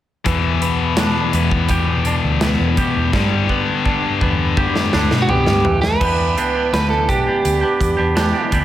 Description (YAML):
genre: quiet-loud alternative rock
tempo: 83 BPM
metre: 4/4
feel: straight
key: E minor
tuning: A4 = 442 Hz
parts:
  - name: scooped high-gain guitar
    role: riff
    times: 0.2-5.6 s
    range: E2 to G3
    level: -19 LUFS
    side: left 6 dB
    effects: distortion
  - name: twangy electric guitar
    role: arpeggios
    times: 0.3-8.6 s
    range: E3 to G4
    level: -22 LUFS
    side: right 3 dB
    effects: spring reverb
  - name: hollow-body short-scale fingered electric bass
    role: bass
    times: 0.3-8.6 s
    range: B1 to B2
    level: -20 LUFS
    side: equal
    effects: none
  - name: big rock drum kit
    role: drums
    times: 0.3-8.6 s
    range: crash cymbal, hi-hat, kick drum, snare drum, toms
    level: -21 LUFS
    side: equal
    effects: none
  - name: lightly driven lead guitar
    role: melody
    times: 5.2-8.5 s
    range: F#4 to B4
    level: -19 LUFS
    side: right 2 dB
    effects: slapback echo
room: moderate large studio reverb, RT60 0.9 s, small room ambience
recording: none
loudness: -15 LUFS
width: side -12 dB against mid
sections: 0.3-6.0 A section; 6.0-8.6 B section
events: drum fill 3.1-6.0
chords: 0.3 Em7; 5.7 Em; 6.0 Em7